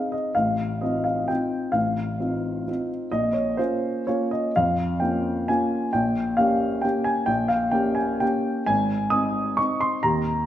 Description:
classical, piano waltz; 130 BPM; 3/4; uneven beats, rubato; A4 = 440 Hz
warm baby grand piano; solo; 0.0-10.5 s; Ab1 to Eb6; -21 LUFS; equal
wet recital hall reverb, RT60 1.5 s; -21 LUFS; side -11 dB against mid
0.0-10.5 A section
0.4 F7/A; 3.1 Bbm; 5.9 Gdim/Bb; 8.7 Ab

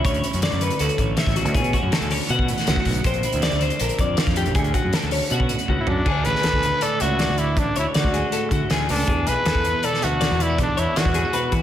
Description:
math rock and midwest emo; 159 BPM; 4/4; straight; D lydian; A4 = 439 Hz
twelve-string electric guitar; accompaniment; 0.0-11.6 s; D2 to G#4; -28 LUFS; right 6 dB; analog chorus, slapback echo
twelve-string electric guitar; arpeggios; 0.0-11.6 s; F#4 to F#5; -26 LUFS; left 4 dB; slapback echo
fuzz fingered electric bass; bass; 0.0-11.6 s; A1 to E3; -25 LUFS; equal; overdrive
loose indie drum kit; drums; 0.0-11.6 s; crash cymbal, hi-hat, kick drum, snare drum, toms; -24 LUFS; equal
growling trumpet; melody; 5.8-11.5 s; D4 to B4; -23 LUFS; equal; slapback echo
moderate lush hall reverb, RT60 1.8 s, small room reverb; big arena sound; -18 LUFS; side -11 dB against mid
0.0-6.1 A section; 6.1-11.6 B section
drum fill 5.7-6.1
0.1 Dmaj9#11; 3.1 Bbmaj9; 4.6 Dmaj7; 6.1 Dmaj7#11; 9.1 E7

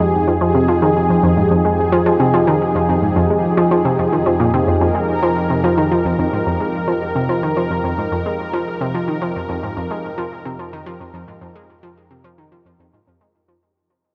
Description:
ambient, sequencer-driven space music; 109 BPM; 4/4; straight; F minor; A4 = 439 Hz
lush unison pad; sustained chords; 0.0-13.6 s; F2 to Bb4; -20 LUFS; equal; chorus
analog pluck; riff; 0.0-13.5 s; F2 to Ab3; -20 LUFS; equal; chorus, delay
wet huge ambient reverb, RT60 8.1 s; worn, warbling old tape, cassette tape, warbly pitch drift; -17 LUFS; mono
0.0-13.6 A section
fade-out 4.8-13.6
0.0 Fm7

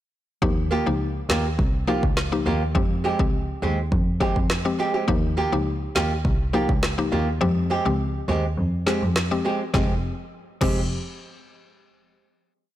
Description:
dancehall; 103 BPM; 4/4; straight; F minor; A4 = 440 Hz
mallet-like synth pluck; accompaniment; 0.4-10.8 s; F3 to G4; -28 LUFS; left 4 dB; chorus
clear double bass; bass; 0.4-10.9 s; F1 to F2; -25 LUFS; equal
afro-pop drum kit; drums; 0.4-10.8 s; crash cymbal, kick drum, rim click, snare drum; -25 LUFS; equal
flamenco guitar; arpeggios; 0.7-10.8 s; Ab3 to G4; -27 LUFS; right 3 dB
light reverb, studio ambience; blown-out, overdriven recording, overdrive; -21 LUFS; side -13 dB against mid
0.4-9.7 verse; 9.7-12.1 final chord
kick muted 7.4-9.7
0.4 Ebadd9; 2.8 Fmadd9; 5.1 Ebadd9; 7.4 Fmadd9

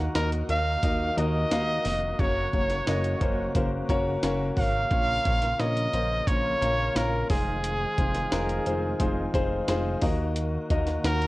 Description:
piano-driven pop; 88 BPM; 4/4; straight; Bb minor; A4 = 440 Hz
warm grand piano; accompaniment; 0.0-11.3 s; Bb2 to Gb5; -30 LUFS; left 2 dB
tonewheel organ; sustained chords; 0.0-11.3 s; Db3 to Gb4; -37 LUFS; right 1 dB; overdrive, chorus vibrato, lush chorus
chorused synth bass; bass; 0.0-11.3 s; F1 to Eb2; -29 LUFS; equal
clear trumpet; melody; 0.2-11.3 s; Ab4 to F5; -28 LUFS; right 1 dB
jungle sampler-style drum kit; drums; 0.2-11.3 s; hi-hat, kick drum, snare drum; -29 LUFS; equal
light reverb; worn, warbling old tape, cassette tape, warbly pitch drift; -24 LUFS; side -19 dB against mid
0.0-11.3 A section
0.0 Ebm; 2.2 Gb; 4.9 Bbm; 7.3 Fm7; 10.0 Ebm

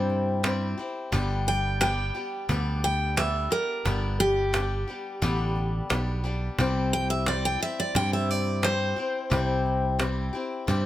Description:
honky-tonk and classic country; 88 BPM; 4/4; straight; C major; A4 = 440 Hz
picked steel-string acoustic guitar; melody; 0.0-10.0 s; G4 to G5; -28 LUFS; equal
picked swing-style acoustic guitar; accompaniment; 0.0-10.9 s; G2 to G4; -30 LUFS; left 3 dB
fingered electric bass; bass; 0.0-10.9 s; G1 to G2; -28 LUFS; right 1 dB
cajon; drums; 0.1-10.8 s; -29 LUFS; right 1 dB
little or no reverb; close, detailed microphones; -24 LUFS; side -13 dB against mid
0.0-10.9 A section
steel-string acoustic guitar solo 0.0-10.9
0.0 C; 1.1 G; 6.6 C

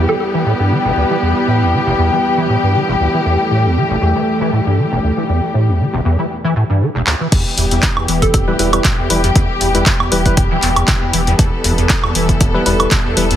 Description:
acid house; 118 BPM; 4/4; swing 54% on 16ths; E minor; A4 = 440 Hz
muted studio string section; sustained chords; 0.0-13.4 s; E3 to A4; -17 LUFS; left 1 dB; sidechain pumping
acid bass, square; riff; 0.0-13.4 s; E1 to E3; -17 LUFS; equal; overdrive, ensemble chorus, dub echo
hollow square pluck; melody; 0.1-0.3, 8.2-8.4 s; A4; -23 LUFS; right 3 dB; analog chorus, vintage 12-bit sampler grit, tape echo
punchy analog drum machine; drums; 7.1-13.4 s; crash cymbal, handclaps, hi-hat, woodblock; -17 LUFS; equal
electronic kick drum; drums; 7.3-13.0 s; -15 LUFS; equal
warm sub bass; bass; 7.6-13.4 s; D1 to E1; -20 LUFS; equal; sidechain pumping
percussive organ stab; stabs; 8.5-13.3 s; G3 to B4; -20 LUFS; left 1 dB; chorus, dub echo
light reverb, digital ambience; heavily compressed radio sound, multiband compression; -12 LUFS; side -10 dB against mid
0.0-7.3 A section; 7.3-13.4 B section
filter sweep on acid bass 0.0-7.3; drum fill 7.1; drop 7.3-13.4
0.0 Em

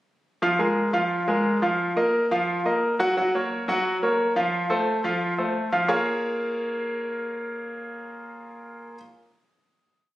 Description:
latin; 176 BPM; 4/4; straight; Bb minor; A4 = 440 Hz
bright grand piano; solo; 0.4-9.0 s; F3 to Gb5; -22 LUFS; equal
moderate studio reverb, RT60 0.5 s; recorded on a phone in the room, studio reverb, compression; -22 LUFS; side -16 dB against mid
0.4-5.9 verse; 5.9-8.6 final chord
0.4 Bb5; 1.8 Ebmadd9; 3.2 Gb; 4.5 F; 5.9 Bbm7

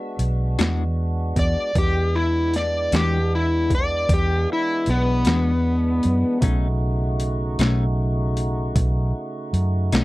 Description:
slow blues; 51 BPM (dotted quarters); 12/8; straight; E mixolydian; A4 = 440 Hz
tonewheel organ; sustained chords; 0.0-10.0 s; C#3 to F#4; -30 LUFS; right 1 dB; slow rotary speaker, overdrive
vintage muted fingered electric bass; bass; 0.2-10.0 s; B1 to F#2; -22 LUFS; equal
boom bap sampler-style drum kit; drums; 0.2-10.0 s; hi-hat, kick drum, snare drum; -23 LUFS; equal; overdrive
clean electric guitar; accompaniment; 0.6-10.0 s; B2 to F#4; -24 LUFS; left 4 dB; tremolo
overdriven slide guitar; melody; 1.4-6.4 s; B3 to D5; -22 LUFS; left 1 dB
little or no reverb; dry, close 1970s-style studio recording; -19 LUFS; side -19 dB against mid
0.0-10.0 A section
electric slide guitar solo 0.0-10.0
0.0 E9; 6.4 B9

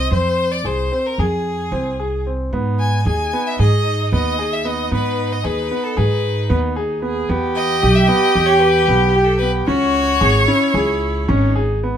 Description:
contemporary instrumental, chamber music in an uneven meter; 226 BPM (eighths); 9/8; straight; A4 = 440 Hz
bright violin; melody; 0.0-11.5 s; G4 to G#5; -21 LUFS; left 2 dB
clear concert grand piano; arpeggios; 0.0-12.0 s; B3 to Ab4; -21 LUFS; equal
upright bass; bass; 0.0-12.0 s; G#1 to G#2; -19 LUFS; right 1 dB
rich viola; second line; 2.5-11.8 s; D#4 to G#4; -20 LUFS; equal
light reverb; close, detailed microphones; -15 LUFS; side -9 dB against mid
0.0-12.0 A section
0.0 Fm; 2.5 G#m; 7.3 Em; 9.7 C#sus2

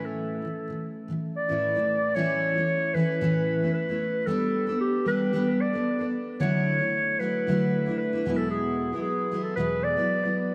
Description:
acoustic pop; 113 BPM; 4/4; straight; A major; A4 = 440 Hz
breathy clarinet; melody; 0.0-10.4 s; G4 to D5; -29 LUFS; equal; delay
picked steel-string acoustic guitar; accompaniment; 0.0-10.5 s; E2 to A4; -29 LUFS; equal; double-tracked
wet plate reverb, RT60 2.6 s; dreamy mix soaked in reverb; -26 LUFS; mono
0.0-2.2 A section; 2.2-10.5 B section
0.0 A; 4.3 Gadd9; 6.4 Dadd9; 8.2 Eadd9

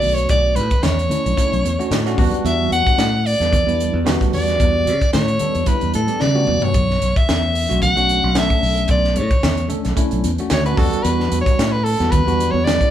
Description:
electric jazz fusion; 112 BPM; 4/4; swing 55% on 16ths; B minor; A4 = 440 Hz
breathy soprano saxophone; melody; 0.0-12.9 s; A4 to F#5; -20 LUFS; equal
bell-like tine electric piano; accompaniment; 0.0-12.9 s; G3 to A4; -24 LUFS; right 1 dB; fast stereo tremolo
fingered electric bass; bass; 0.0-12.8 s; B1 to C#3; -20 LUFS; equal
crisp fusion drum kit; drums; 0.0-12.9 s; hi-hat, kick drum, snare drum, toms; -20 LUFS; equal
congas; percussion; 0.0-12.8 s; -28 LUFS; equal
moderate large studio reverb, RT60 1.2 s; band playing live in one room; -15 LUFS; side -11 dB against mid
0.0-12.9 A section
drum fill 6.2-6.7
0.0 Bm9; 2.2 Em9; 6.7 Bm9; 10.8 Em9

